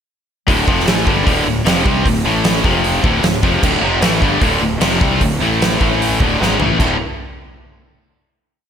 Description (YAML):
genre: hard rock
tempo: 152 BPM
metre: 4/4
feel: straight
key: D minor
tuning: A4 = 442 Hz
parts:
  - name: cranked stack guitar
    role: riff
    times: 0.5-7.0 s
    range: D2 to C4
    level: -18 LUFS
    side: left 9 dB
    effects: overdrive
  - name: tight distorted guitar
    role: riff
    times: 0.5-7.0 s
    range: D2 to C4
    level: -19 LUFS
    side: right 10 dB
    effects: distortion
  - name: fuzz fingered electric bass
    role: bass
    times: 0.5-7.0 s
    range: D1 to C2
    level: -20 LUFS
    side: equal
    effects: overdrive
  - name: huge arena drum kit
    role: drums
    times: 0.5-6.9 s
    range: crash cymbal, hi-hat, kick drum, snare drum, toms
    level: -17 LUFS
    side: right 1 dB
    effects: none
room: light reverb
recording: none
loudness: -12 LUFS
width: side -8 dB against mid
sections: 0.5-6.8 riff; 6.8-8.4 final chord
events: drum fill 6.4-6.8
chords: 0.5 Dm; 2.3 A5; 2.7 F5; 3.0 Dm; 5.4 A5; 6.2 D5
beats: | 0.49 0.88 1.27 1.67 | 2.06 2.45 2.85 3.24 | 3.64 4.03 4.43 4.82 | 5.21 5.61 6.00 6.40 | 6.79